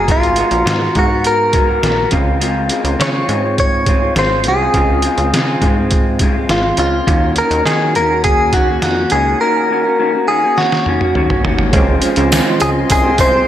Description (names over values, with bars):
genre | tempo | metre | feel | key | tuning
indie pop, bedroom pop | 103 BPM | 4/4 | straight | Db major | A4 = 440 Hz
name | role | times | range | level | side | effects
direct-recorded clean electric guitar | melody | 0.0-13.5 s | F4 to Db5 | -16 LUFS | equal | analog chorus, slapback echo, tape echo
electric guitar through a small old amp | accompaniment | 0.0-13.5 s | Db3 to Bb4 | -19 LUFS | left 2 dB | lush chorus, warbly pitch drift, slapback echo
plucky analog bass | bass | 0.0-13.4 s | Gb1 to Eb3 | -19 LUFS | equal | none
trip hop sampler-style drum kit | drums | 0.1-13.3 s | hi-hat, kick drum, snare drum, toms | -17 LUFS | equal | none
percussive tonewheel organ | accompaniment | 11.7-13.1 s | Ab3 to C5 | -18 LUFS | right 4 dB | chorus vibrato, slow rotary speaker, slapback echo
warm analog pad | sustained chords | 11.7-13.5 s | Ab4 to C6 | -24 LUFS | right 1 dB | chorus
tambourine | percussion | 12.0-13.3 s | none | -28 LUFS | right 8 dB | none
room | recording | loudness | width
moderate recital hall reverb, RT60 1.4 s | big arena sound | -12 LUFS | side -11 dB against mid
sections
0.0-11.7 A section; 11.7-13.5 B section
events
drum fill 10.6-11.7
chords
0.0 Abm9; 2.1 Dbmaj7; 7.1 Ebm7; 11.7 Dbmaj7